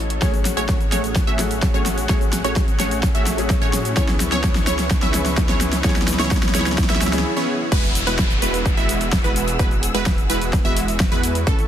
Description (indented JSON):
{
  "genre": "EDM, festival progressive house",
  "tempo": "128 BPM",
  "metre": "4/4",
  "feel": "straight",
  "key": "E major",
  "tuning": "A4 = 440 Hz",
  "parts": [
    { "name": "clear concert grand piano", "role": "accompaniment", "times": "0.0-7.7 s", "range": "E3 to A4", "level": "-30 LUFS", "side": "left 6 dB", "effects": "sidechain pumping, dub echo" },
    { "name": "dark chamber string section", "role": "sustained chords", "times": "0.0-11.7 s", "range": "G#4 to E6", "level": "-33 LUFS", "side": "left 1 dB", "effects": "sidechain pumping" },
    { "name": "wide detuned saw bass", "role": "bass", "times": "0.0-11.7 s", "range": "E1 to A2", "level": "-27 LUFS", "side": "equal", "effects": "chorus, tube saturation, sidechain pumping" },
    { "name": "riser, swell and downlifter", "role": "sound effects", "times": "0.0-11.5 s", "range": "none", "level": "-31 LUFS", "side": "right 1 dB", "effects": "none" },
    { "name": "big-room dance drum kit", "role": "drums", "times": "0.1-11.7 s", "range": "cabasa, crash cymbal, hi-hat, snare drum", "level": "-24 LUFS", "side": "equal", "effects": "overdrive" },
    { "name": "wide unison pluck", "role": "arpeggios", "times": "0.2-11.6 s", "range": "A4 to E5", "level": "-27 LUFS", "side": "right 2 dB", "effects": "phaser, vintage 12-bit sampler grit, sidechain pumping, dub echo" },
    { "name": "supersaw stab", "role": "riff", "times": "0.2-11.6 s", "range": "G#3 to E5", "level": "-25 LUFS", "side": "right 1 dB", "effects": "sidechain pumping, low-pass filter, dub echo" },
    { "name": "electronic kick drum", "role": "drums", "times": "0.2-11.6 s", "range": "none", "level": "-20 LUFS", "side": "equal", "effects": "overdrive" }
  ],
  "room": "little or no reverb",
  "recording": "dense, heavily limited modern master",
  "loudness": "-17 LUFS",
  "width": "side -10 dB against mid",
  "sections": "0.0-7.7 A section; 7.7-11.7 B section",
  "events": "build-up 0.0-7.7; drum fill 0.0-7.2; filter sweep on supersaw synth 0.0-7.7; swell 6.8-7.7; break 7.2-7.7; drop 7.7-11.7",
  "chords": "0.2 F#madd9/A; 4.0 C#m7; 7.7 Eadd9"
}